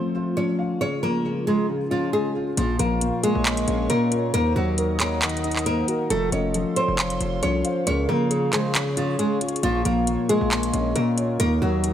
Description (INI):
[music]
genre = hip hop, trap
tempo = 136 BPM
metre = 4/4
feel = half-time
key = Bb minor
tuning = A4 = 445 Hz
[part]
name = nylon-string guitar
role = melody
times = 0.0-11.9 s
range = F3 to Db5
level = -24 LUFS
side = equal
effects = digital delay
[part]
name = dark concert grand piano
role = accompaniment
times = 0.0-11.9 s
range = Bb2 to F5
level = -26 LUFS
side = left 3 dB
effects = none
[part]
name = dark analog pad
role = sustained chords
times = 0.0-11.9 s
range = Db3 to Eb6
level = -33 LUFS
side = equal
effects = chorus, phaser
[part]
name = distorted 808-style bass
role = bass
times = 2.6-11.9 s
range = F1 to Db3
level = -27 LUFS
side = right 1 dB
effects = distortion
[part]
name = trap drum kit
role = drums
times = 2.6-11.9 s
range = handclaps, hi-hat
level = -26 LUFS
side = equal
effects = vintage 12-bit sampler grit
[part]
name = hollow clarinet-like synth lead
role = second line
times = 2.8-11.4 s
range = Ab4 to F5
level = -31 LUFS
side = right 4 dB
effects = chorus, digital delay
[sound]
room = light reverb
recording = none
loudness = -20 LUFS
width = side -10 dB against mid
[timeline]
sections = 0.0-2.6 A section; 2.6-11.9 B section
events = none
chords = 0.0 F; 0.8 Db; 2.6 Bbm; 4.3 Ebm; 6.1 F; 7.9 Db; 9.6 Bbm; 11.4 Ebm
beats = 0.37 | 0.81 1.25 1.69 2.13 | 2.57 3.02 3.46 3.90 | 4.34 4.78 5.22 5.66 | 6.10 6.54 6.99 7.43 | 7.87 8.31 8.75 9.19 | 9.63 10.07 10.52 10.96 | 11.40 11.84